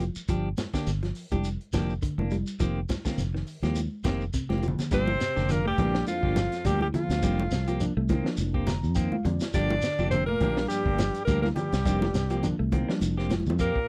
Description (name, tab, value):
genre	afrobeat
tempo	104 BPM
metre	4/4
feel	swing 56% on 16ths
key	G minor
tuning	A4 = 441 Hz
part	clean electric guitar	arpeggios	0.0-13.5 s	C3 to A3	-36 LUFS	equal	none
part	clean electric guitar	stabs	0.0-13.8 s	Eb3 to G4	-35 LUFS	equal	warbly pitch drift
part	fingered electric bass	bass	0.0-13.7 s	F1 to F2	-31 LUFS	equal	none
part	crunchy breakbeat drum kit	drums	0.0-13.9 s	hi-hat, kick drum, snare drum	-35 LUFS	equal	none
part	shekere	percussion	0.0-13.8 s	none	-40 LUFS	equal	none
part	congas	percussion	0.6-13.6 s	none	-35 LUFS	equal	none
part	bright alto saxophone	melody	4.9-13.9 s	F4 to D5	-32 LUFS	equal	none
part	clear tenor saxophone	second line	4.9-13.9 s	F3 to D4	-41 LUFS	equal	none
part	warm trombone section	second line	4.9-13.9 s	F2 to D3	-40 LUFS	equal	none
part	reed electric piano	accompaniment	4.9-13.3 s	F3 to Bb5	-36 LUFS	equal	overdrive
room	little or no reverb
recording	dry, close 1970s-style studio recording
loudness	-27 LUFS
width	mono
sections	0.0-4.9 A section; 4.9-13.9 B section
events	drum fill 4.5-4.9, 13.3-13.9; reed electric piano fill 8.4-9.5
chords	0.3 Gm7; 2.6 F9sus4; 4.9 Gm7; 7.2 F9sus4; 9.5 Gm7; 11.9 F9sus4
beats	| 0.29 0.87 1.45 2.03 | 2.60 3.18 3.76 4.34 | 4.92 5.50 6.08 6.65 | 7.23 7.81 8.39 8.96 | 9.54 10.12 10.70 11.28 | 11.86 12.43 13.01 13.59